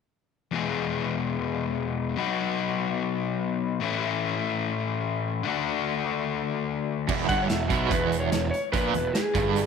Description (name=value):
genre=classic rock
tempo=146 BPM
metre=4/4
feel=straight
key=E mixolydian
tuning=A4 = 442 Hz
part: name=crunchy overdriven guitar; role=riff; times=0.5-9.7 s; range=E2 to G#4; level=-27 LUFS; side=left 6 dB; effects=none
part: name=overdriven semi-hollow guitar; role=riff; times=7.1-9.7 s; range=E2 to B2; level=-28 LUFS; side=right 12 dB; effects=tremolo
part: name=fuzz picked electric bass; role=bass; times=7.1-9.7 s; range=E1 to B1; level=-30 LUFS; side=right 3 dB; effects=overdrive
part: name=big rock drum kit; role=drums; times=7.1-9.6 s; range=crash cymbal, hi-hat, kick drum, snare drum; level=-29 LUFS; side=right 2 dB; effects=none
part: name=clean lap steel guitar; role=melody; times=7.3-9.7 s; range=G#4 to F#5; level=-27 LUFS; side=equal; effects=none
room=moderate echo chamber reverb, RT60 1.8 s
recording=1960s-style stereo with parts hard left and right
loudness=-25 LUFS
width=side -6 dB against mid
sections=0.5-7.1 A section; 7.1-9.7 B section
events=none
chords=0.5 E; 2.2 B; 3.8 A; 5.5 D; 7.1 E